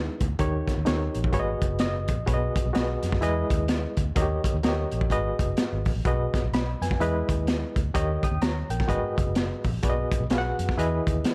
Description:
uptempo 1960s-style soul; 127 BPM; 4/4; swing 60% on 8ths; B major; A4 = 435 Hz
barky reed electric piano; accompaniment; 0.0-11.3 s; G#2 to D#6; -31 LUFS; equal; overdrive, fast tremolo
vintage muted fingered electric bass; bass; 0.0-11.2 s; F#1 to F#2; -31 LUFS; equal
crunchy breakbeat drum kit; drums; 0.2-11.3 s; hi-hat, kick drum, snare drum; -29 LUFS; equal
light reverb, small room ambience; -26 LUFS; mono
0.0-11.3 A section
reed electric piano fill 1.6-2.3
0.4 D#7; 1.3 G#m7; 2.3 B6; 3.2 Emaj7; 4.2 D#7; 5.1 G#m7; 6.1 B6; 7.0 Emaj7; 7.9 D#7; 8.9 G#m7; 9.8 B6; 10.8 Emaj7
| 0.39 0.86 1.33 1.80 | 2.28 2.75 3.22 3.69 | 4.16 4.64 5.11 5.58 | 6.05 6.53 7.00 7.47 | 7.95 8.42 8.89 9.37 | 9.84 10.31 10.78 11.26

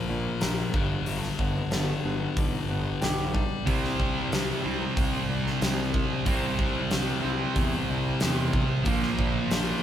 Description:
quiet-loud alternative rock; 92 BPM; 4/4; straight; A4 = 441 Hz
electric guitar through a small old amp; arpeggios; 0.0-3.7 s; G2 to Bb4; -36 LUFS; equal
thick fuzz guitar; riff; 0.0-9.8 s; G2 to C4; -30 LUFS; left 5 dB; distortion
fuzz picked electric bass; bass; 0.1-9.7 s; G1 to E2; -33 LUFS; equal; overdrive
huge arena drum kit; drums; 0.4-9.7 s; hi-hat, kick drum, snare drum; -29 LUFS; equal
thick fuzz guitar; riff; 3.7-9.8 s; Bb2 to C4; -30 LUFS; right 8 dB; distortion
light reverb; band playing live in one room; -24 LUFS; side -10 dB against mid
0.0-9.8 A section
0.0 Bb; 0.7 G; 3.7 C5; 8.9 Bb5
0.41 | 1.06 1.71 2.36 3.01 | 3.66 4.31 4.96 5.61 | 6.26 6.91 7.56 8.21 | 8.86 9.51

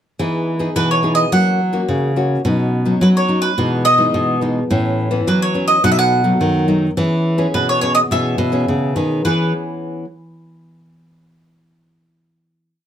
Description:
samba and choro; 106 BPM; 4/4; straight; E major; A4 = 440 Hz
nylon-string guitar; accompaniment; 0.2-10.0 s; F#2 to G#4; -20 LUFS; left 2 dB
nylon-string guitar; bass; 0.2-9.5 s; A2 to F#3; -18 LUFS; equal
mandolin; melody; 0.8-9.5 s; B4 to F#5; -17 LUFS; right 1 dB
light reverb; close, detailed microphones; -14 LUFS; side -10 dB against mid
0.2-9.3 A section; 9.3-11.5 final chord
0.2 Emaj7; 1.3 F#; 2.5 Badd9; 3.6 Emaj7/B; 4.7 Aadd9; 5.8 B7; 7.0 E6
| 0.20 0.76 1.32 1.89 | 2.45 3.02 3.58 4.15 | 4.71 5.28 5.84 6.41 | 6.98 7.55 8.12 8.68 | 9.25 9.82

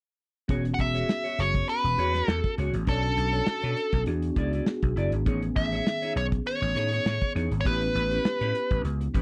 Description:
polished 1980s jazz-funk pop; 100 BPM; 4/4; swing 54% on 16ths; E major; A4 = 441 Hz
mellow tine electric piano; accompaniment; 0.5-9.2 s; D#3 to A4; -36 LUFS; equal; analog chorus
clean electric guitar; riff; 0.5-9.2 s; C#4 to D5; -38 LUFS; equal; analog chorus
vintage slap bass; bass; 0.5-9.2 s; E1 to B2; -31 LUFS; equal
modern studio drum kit; drums; 0.5-9.2 s; hi-hat, kick drum, snare drum; -30 LUFS; equal
nasal lead guitar with a parked wah; melody; 0.7-8.8 s; A4 to F#5; -30 LUFS; equal; overdrive
little or no reverb; dry, close 1970s-style studio recording; -27 LUFS; mono
0.5-9.2 A section
0.5 E69; 2.9 Bm9; 4.1 E7; 5.3 Amaj9#11; 7.7 A9
| 0.49 1.09 1.68 2.28 | 2.88 3.47 4.07 4.67 | 5.26 5.86 6.46 7.05 | 7.65 8.25 8.85

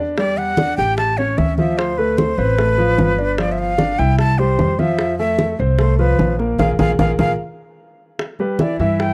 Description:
Afro-Cuban jazz; 150 BPM; 4/4; straight; A4 = 440 Hz
clear concert grand piano; accompaniment; 0.0-9.1 s; E3 to G5; -24 LUFS; equal
upright bass; bass; 0.0-9.1 s; G1 to G2; -22 LUFS; equal
breathy silver concert flute; melody; 0.2-9.1 s; B4 to A5; -22 LUFS; equal
bongos; percussion; 0.2-9.1 s; -27 LUFS; equal
congas; percussion; 0.2-9.1 s; -24 LUFS; equal
studio reverb; dry, close 1970s-style studio recording; -17 LUFS; mono
0.0-8.2 A section
band accent 6.6-8.2
0.2 Em11; 1.0 A7b13; 1.8 Dm7; 3.4 G5; 4.2 C; 5.0 Fmaj7; 6.6 Bb5; 7.4 N.C.; 8.2 G6
| 0.18 0.58 0.98 1.38 | 1.78 2.18 2.58 2.98 | 3.38 3.79 4.19 4.59 | 4.99 5.39 5.79 6.19 | 6.59 6.99 7.39 7.79 | 8.19 8.59 8.99

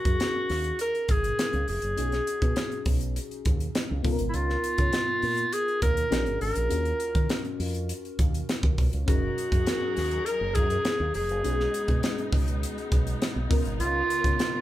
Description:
polished 1980s jazz-funk pop; 101 BPM; 4/4; straight; F# major; A4 = 441 Hz
clear clarinet; melody; 0.0-14.6 s; E4 to A#4; -27 LUFS; equal
FM electric piano with soft pad layer; accompaniment; 0.0-14.6 s; B3 to A#4; -35 LUFS; left 4 dB; chorus
fingered electric bass with an envelope filter; bass; 0.1-14.4 s; E#1 to D#3; -30 LUFS; equal
crisp fusion drum kit; drums; 0.1-14.5 s; hi-hat, kick drum, snare drum; -27 LUFS; equal
warm studio string section; sustained chords; 9.1-14.6 s; C#3 to A#4; -37 LUFS; left 1 dB
light reverb; band playing live in one room; -24 LUFS; side -14 dB against mid
0.0-14.6 A section
0.0 F#69; 2.0 B69; 4.0 C#13; 6.1 A#7alt; 6.7 D#m9; 9.1 F#69; 11.4 B69; 13.5 C#13
0.20 0.79 1.38 | 1.97 2.57 3.16 3.75 | 4.34 4.93 5.53 6.12 | 6.71 7.30 7.89 8.48 | 9.07 9.66 10.26 10.85 | 11.44 12.03 12.62 13.21 | 13.80 14.39

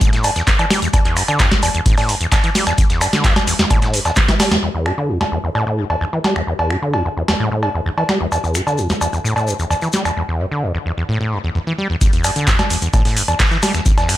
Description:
acid house; 130 BPM; 4/4; straight; E minor; A4 = 439 Hz
acid bass, saw; riff; 0.0-14.2 s; E2 to G3; -19 LUFS; equal; overdrive, sidechain pumping, ping-pong delay
booming analog drum machine; drums; 0.0-14.2 s; cowbell, finger snaps, handclaps, hi-hat, snare drum; -18 LUFS; equal
dusty soul sampler-style drum kit; drums; 0.0-4.6, 12.0-14.2 s; hi-hat, snare drum; -30 LUFS; right 1 dB
electronic kick drum; drums; 0.0-4.4, 12.0-14.0 s; -16 LUFS; equal
shekere; percussion; 0.0-4.6, 8.3-14.2 s; -28 LUFS; left 5 dB
moderate studio reverb, RT60 0.6 s; -14 LUFS; side -14 dB against mid
0.0-4.6 A section; 4.6-12.0 B section; 12.0-14.2 A section
drop 0.0-4.6, 12.0-14.2; drum fill 4.2-4.6; band accent 4.5; break 10.2-12.0
0.01 0.47 | 0.94 1.40 1.86 2.32 | 2.78 3.24 3.71 4.17 | 4.63 5.09 5.55 6.01 | 6.47 6.93 7.40 7.86 | 8.32 8.78 9.24 9.71 | 10.17 10.63 11.09 11.55 | 12.01 12.47 12.94 13.40 | 13.86

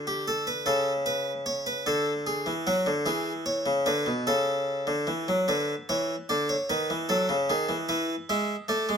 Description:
classical, baroque-style two-part invention for harpsichord; 50 BPM (dotted quarters); 6/8; straight; A4 = 440 Hz
harpsichord; solo; 0.0-9.0 s; B2 to E5; -25 LUFS; equal
moderate stone room reverb, RT60 1.2 s; -25 LUFS; side -6 dB against mid
0.0-5.5 A section; 5.5-9.0 B section
0.0 D5; 0.7 A/C#; 1.9 D; 3.1 E7; 4.3 A/C#; 5.5 Bmadd9/D; 6.7 B7/D#; 7.9 E
| 0.68 1.87 | 3.07 4.27 | 5.48 6.69 | 7.89

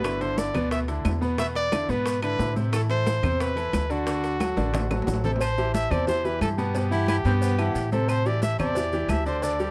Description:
latin, salsa; 179 BPM; 4/4; straight; A4 = 440 Hz
warm trumpet; melody; 0.0-9.7 s; F#4 to E5; -31 LUFS; equal; tape echo
bright grand piano; accompaniment; 0.0-9.7 s; B2 to F#5; -31 LUFS; equal
upright bass; bass; 0.0-9.7 s; G1 to A2; -30 LUFS; equal
bongos and cowbell; percussion; 0.0-9.6 s; -38 LUFS; equal
claves; percussion; 0.0-9.3 s; -39 LUFS; equal
congas; percussion; 0.0-9.7 s; -33 LUFS; equal
maracas; percussion; 0.0-9.7 s; -48 LUFS; equal
timbales and agogo bells; percussion; 0.0-9.7 s; -38 LUFS; equal
breathy baritone saxophone; second line; 6.9-7.8 s; B3 to E4; -32 LUFS; equal
little or no reverb; dry, close 1970s-style studio recording; -25 LUFS; mono
0.0-5.4 A section; 5.4-9.7 B section
drum fill 4.4-5.4
0.0 G6; 1.4 E7; 2.7 Amadd9; 4.1 D; 5.4 Am7; 6.8 Emadd9/G; 8.1 Am7
| 0.04 0.38 0.72 1.05 | 1.39 1.72 2.06 2.39 | 2.73 3.06 3.40 3.73 | 4.07 4.40 4.74 5.08 | 5.41 5.75 6.08 6.42 | 6.75 7.08 7.42 7.75 | 8.09 8.43 8.76 9.10 | 9.43

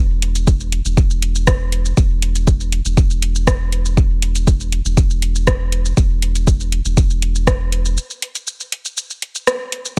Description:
dub techno; 120 BPM; 4/4; straight; A4 = 440 Hz
warm sub bass; bass; 0.0-8.0 s; E1; -21 LUFS; equal; sidechain pumping
soft vintage rhythm box; drums; 0.2-9.9 s; hi-hat, rim click, shaker; -23 LUFS; equal
electronic kick drum; drums; 0.5-7.6 s; -17 LUFS; equal; overdrive
digital ambience; -17 LUFS; mono
0.0-10.0 A section
break 8.0-10.0
0.47 0.97 1.47 | 1.97 2.47 2.97 3.47 | 3.97 4.47 4.97 5.47 | 5.97 6.47 6.97 7.47 | 7.97 8.47 8.97 9.47

